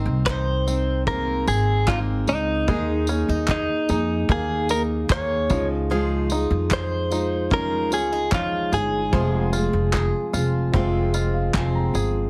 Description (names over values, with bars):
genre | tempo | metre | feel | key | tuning
acoustic pop | 74 BPM | 4/4 | straight | Ab major | A4 = 440 Hz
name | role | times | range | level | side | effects
dark baby grand piano | accompaniment | 0.0-12.3 s | Ab3 to Bb5 | -36 LUFS | equal | none
picked steel-string acoustic guitar | accompaniment | 0.0-12.3 s | F2 to Bb4 | -29 LUFS | equal | none
bluegrass banjo | arpeggios | 0.0-12.3 s | Eb3 to Ab4 | -35 LUFS | equal | none
upright bass | bass | 0.0-12.3 s | F1 to F2 | -27 LUFS | equal | none
direct-recorded clean electric guitar | melody | 0.3-11.9 s | Eb4 to Db5 | -27 LUFS | equal | none
vintage brush drum kit | drums | 0.3-12.1 s | handclaps, kick drum, tambourine | -29 LUFS | equal | none
group handclap | percussion | 0.3-11.7 s | none | -40 LUFS | equal | none
room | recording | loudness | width
light reverb | heavily compressed radio sound, multiband compression | -22 LUFS | mono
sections
0.0-12.3 A section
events
grand piano fill 10.7-12.3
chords
0.0 Abadd9; 2.7 Ebsus4; 5.5 Dbadd9; 9.1 Fm